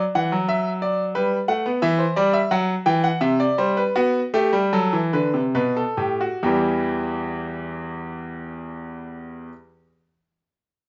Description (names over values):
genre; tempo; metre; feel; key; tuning
classical, baroque-style two-part invention for grand piano; 65-90 BPM; 3/4; straight; E minor; A4 = 441 Hz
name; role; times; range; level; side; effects
bright grand piano; solo; 0.0-9.5 s; E2 to G5; -22 LUFS; equal; none
room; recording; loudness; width
moderate stone room reverb, RT60 1.1 s; nothing above 7.7 kHz; -22 LUFS; mono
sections
0.0-6.4 A section; 6.4-10.9 B section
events
slowing down 0.8-6.4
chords
0.0 D; 1.2 Gmaj9; 1.8 Em; 3.2 Cmaj9; 4.0 B7sus4; 5.5 B5; 6.4 Em